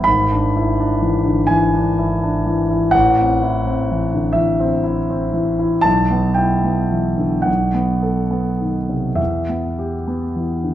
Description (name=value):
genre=classical, romantic nocturne for solo piano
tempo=34-42 BPM (dotted quarters)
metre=6/8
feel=rubato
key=unclear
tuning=A4 = 443 Hz
part: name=warm concert grand piano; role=solo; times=0.0-10.7 s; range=G#1 to B5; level=-15 LUFS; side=equal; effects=none
room=wet recital hall reverb, RT60 1.5 s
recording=dark, warm production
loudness=-15 LUFS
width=side -12 dB against mid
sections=0.0-10.7 A section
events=none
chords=0.1 E7/G#; 2.9 Am; 5.9 Em/B; 7.5 B7; 9.2 Em